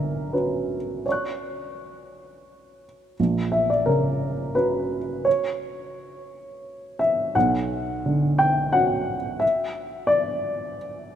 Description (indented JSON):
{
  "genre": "neoclassical minimalist piano",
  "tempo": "86 BPM",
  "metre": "3/4",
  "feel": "rubato",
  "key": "B harmonic minor",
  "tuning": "A4 = 438 Hz",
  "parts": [
    { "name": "dark upright piano", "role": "solo", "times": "0.0-11.2 s", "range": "A#1 to F#6", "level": "-22 LUFS", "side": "equal", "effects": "none" }
  ],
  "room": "moderate lush hall reverb, RT60 2.9 s",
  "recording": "rough home demo mix",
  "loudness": "-21 LUFS",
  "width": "side -10 dB against mid",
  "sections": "0.0-11.2 A section",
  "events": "none",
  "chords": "0.0 Bmadd9; 3.2 F#/A#; 7.3 Bmadd9"
}